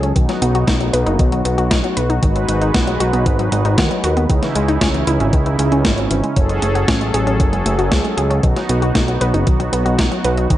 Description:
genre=synthwave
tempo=116 BPM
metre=4/4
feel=straight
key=unclear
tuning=A4 = 440 Hz
part: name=brassy analog pad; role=sustained chords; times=0.0-10.6 s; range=C#3 to B4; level=-21 LUFS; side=right 1 dB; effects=chorus, sidechain pumping
part: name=analog pluck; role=arpeggios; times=0.0-10.6 s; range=D#3 to B4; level=-21 LUFS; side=left 1 dB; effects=chorus, digital delay
part: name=fat analog bass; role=bass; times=0.0-10.6 s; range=F#1 to D#2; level=-18 LUFS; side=equal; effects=none
part: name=clean 12-bit digital drum machine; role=drums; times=0.0-10.6 s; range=hi-hat, snare drum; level=-21 LUFS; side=equal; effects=overdrive, studio reverb, gated reverb
part: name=electronic kick drum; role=drums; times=0.2-10.6 s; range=none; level=-17 LUFS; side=equal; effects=overdrive, studio reverb
room=light reverb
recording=nothing above 10.5 kHz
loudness=-14 LUFS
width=side -13 dB against mid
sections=0.0-10.6 A section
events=none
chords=0.2 B; 2.2 G#m7; 4.3 C#madd9; 6.4 F#madd9; 8.4 B

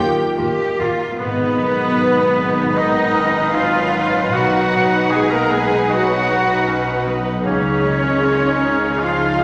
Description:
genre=cinematic, emotional film score for orchestra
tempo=77 BPM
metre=4/4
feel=rubato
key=G# dorian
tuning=A4 = 442 Hz
part: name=rich studio violin section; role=melody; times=0.0-9.4 s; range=none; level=barely audible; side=none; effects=none
part: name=bright small flute group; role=second line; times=0.0-9.4 s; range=B4 to A#5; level=-26 LUFS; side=equal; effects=none
part: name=clear clarinet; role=second line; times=0.0-9.4 s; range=G#3 to G4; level=-30 LUFS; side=equal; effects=none
part: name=clear studio violin section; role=second line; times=0.0-9.4 s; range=B4 to A#5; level=-30 LUFS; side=equal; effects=none
part: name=rich symphonic viola section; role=accompaniment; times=0.0-9.4 s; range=A#3 to B4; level=-24 LUFS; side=equal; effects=none
part: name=dark French horn section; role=sustained chords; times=0.0-9.4 s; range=B2 to E#4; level=-28 LUFS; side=equal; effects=none
part: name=concert harp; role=arpeggios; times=0.0-9.4 s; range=G#2 to B5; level=-28 LUFS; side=equal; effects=none
part: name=rich studio cello section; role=bass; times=0.0-9.4 s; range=B3 to A#4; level=-24 LUFS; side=equal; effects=none
part: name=warm studio double bass section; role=bass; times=0.0-9.4 s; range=G#1 to D#2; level=-29 LUFS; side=equal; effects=none
part: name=warm oboe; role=second line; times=1.2-9.4 s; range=B3 to A#4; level=-24 LUFS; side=equal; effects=none
room=wet scoring stage reverb, RT60 2.0 s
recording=none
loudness=-17 LUFS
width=mono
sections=0.0-1.2 A section; 1.2-9.4 B section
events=none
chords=0.0 D#add9; 1.2 G#m7; 4.3 B; 7.4 C#add9

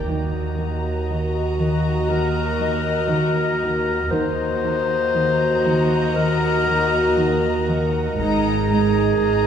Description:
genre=cinematic, suspense film score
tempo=59 BPM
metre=4/4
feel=straight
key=unclear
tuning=A4 = 440 Hz
part: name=dark chamber violin section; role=melody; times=0.0-9.5 s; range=Bb5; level=-30 LUFS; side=left 4 dB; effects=none
part: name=saturated sub bass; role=drone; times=0.0-9.5 s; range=Ab1 to Eb2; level=-30 LUFS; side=right 2 dB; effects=none
part: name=warm chamber violin section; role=second line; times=0.1-9.5 s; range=Eb5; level=-30 LUFS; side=left 5 dB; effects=none
part: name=rich studio viola section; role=accompaniment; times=0.1-9.5 s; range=Eb4 to Gb4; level=-25 LUFS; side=equal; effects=none
part: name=bubbling stepped-filter texture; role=sustained chords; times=0.1-9.5 s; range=Bb4 to Ab5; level=-30 LUFS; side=equal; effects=chorus, built-in reverb
part: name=dark chamber cello section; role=riff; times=0.1-9.5 s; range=Ab2 to Eb3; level=-26 LUFS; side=right 1 dB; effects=none
part: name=dark chamber cello section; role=bass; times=0.1-9.5 s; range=Eb2 to Ab2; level=-27 LUFS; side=right 2 dB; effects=none
part: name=warm chamber double bass section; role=bass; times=0.1-9.5 s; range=Ab1 to Eb2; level=-29 LUFS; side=right 2 dB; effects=none
part: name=warm clarinet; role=second line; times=1.1-9.5 s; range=Gb4 to C5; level=-23 LUFS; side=left 1 dB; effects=none
part: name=celesta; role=texture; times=2.6-8.2 s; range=Eb5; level=-34 LUFS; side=left 10 dB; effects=none
room=wet scoring stage reverb, RT60 1.9 s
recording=heard from further back in the room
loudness=-18 LUFS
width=side -8 dB against mid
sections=0.0-9.5 A section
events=none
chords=0.1 Ebm; 8.2 Absus2

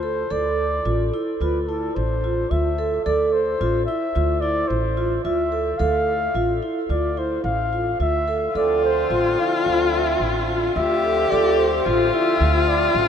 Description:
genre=contemporary instrumental, chamber music in an uneven meter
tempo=109 BPM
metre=5/4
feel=straight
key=D minor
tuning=A4 = 441 Hz
part: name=mellow flugelhorn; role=melody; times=0.0-13.0 s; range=A4 to F5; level=-24 LUFS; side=left 2 dB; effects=none
part: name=vibraphone with soft mallets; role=arpeggios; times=0.0-13.0 s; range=E4 to E5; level=-23 LUFS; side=right 2 dB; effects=none
part: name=upright bass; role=bass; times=0.0-13.1 s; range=A1 to D2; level=-26 LUFS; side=equal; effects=none
part: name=dark viola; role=second line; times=8.6-13.1 s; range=F4 to G4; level=-22 LUFS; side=left 4 dB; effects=none
part: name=pedal harmonium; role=sustained chords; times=8.6-13.1 s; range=D3 to C4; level=-28 LUFS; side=right 2 dB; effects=stereo widening
room=wet huge ambient reverb, RT60 8.1 s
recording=in a vast, echoing space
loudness=-18 LUFS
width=side -8 dB against mid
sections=0.0-13.1 A section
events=none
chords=0.0 Dm9

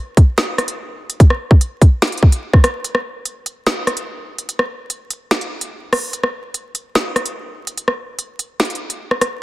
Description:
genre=hip hop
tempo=146 BPM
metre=4/4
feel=half-time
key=none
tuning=none
part: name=drill drum kit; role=drums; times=0.2-9.3 s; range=finger snaps, hi-hat, kick drum, rim click, snare drum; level=-14 LUFS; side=equal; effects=soft clipping on snare
room=light reverb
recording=dense, heavily limited modern master, vinyl crackle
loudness=-15 LUFS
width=side -18 dB against mid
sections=0.0-9.4 A section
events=break 2.8-9.4; kick muted 8.6-9.4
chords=none

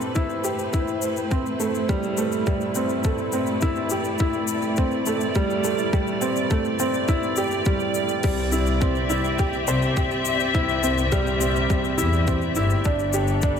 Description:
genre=piano and strings electronica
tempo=104 BPM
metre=4/4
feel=straight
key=A minor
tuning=A4 = 439 Hz
part: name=muted symphonic string section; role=sustained chords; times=0.0-13.6 s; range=G3 to E5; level=-26 LUFS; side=equal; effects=sidechain pumping
part: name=clear upright piano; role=riff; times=0.0-13.6 s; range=G3 to C5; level=-24 LUFS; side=right 1 dB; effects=ping-pong delay
part: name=electronic shaker and crash cymbal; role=drums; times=0.0-13.6 s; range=none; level=-34 LUFS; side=left 9 dB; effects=overdrive, high-pass filter on perc, high-pass filter on cymbals, high-pass filter on room
part: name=electronic kick drum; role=drums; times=0.2-13.5 s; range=none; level=-24 LUFS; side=left 1 dB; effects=overdrive
part: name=rich chamber double bass section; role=bass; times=8.2-13.6 s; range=G1 to E2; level=-25 LUFS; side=left 1 dB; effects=sidechain pumping
room=moderate concert hall reverb, RT60 1.9 s, small room ambience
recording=none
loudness=-20 LUFS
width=side -7 dB against mid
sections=0.0-8.2 A section; 8.2-13.6 B section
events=build-up 0.0-8.2; drop 8.2-13.6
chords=0.0 Am7; 8.2 C; 12.9 Gadd9

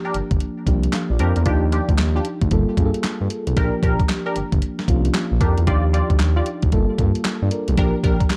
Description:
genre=R&B, new jack swing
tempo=114 BPM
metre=4/4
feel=swing 64% on 16ths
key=unclear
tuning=A4 = 439 Hz
part: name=mellow FM electric piano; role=accompaniment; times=0.0-8.4 s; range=F3 to F5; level=-27 LUFS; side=equal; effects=chorus
part: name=funky polysynth comp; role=stabs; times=0.0-8.2 s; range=D4 to D5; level=-29 LUFS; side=equal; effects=chorus, digital delay
part: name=smooth gliding synth bass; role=bass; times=0.1-8.2 s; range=G1 to G2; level=-22 LUFS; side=equal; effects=none
part: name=clean 12-bit digital drum machine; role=drums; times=0.1-8.4 s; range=handclaps, hi-hat, kick drum, snare drum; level=-23 LUFS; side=equal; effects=overdrive
room=digital ambience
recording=dark, warm production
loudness=-20 LUFS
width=mono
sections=0.0-8.4 A section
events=none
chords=0.0 Bb6; 1.5 Ebmaj9; 2.5 Gm9; 3.6 Bb6; 5.7 Ebmaj9; 6.7 Gm9; 7.8 Bb6

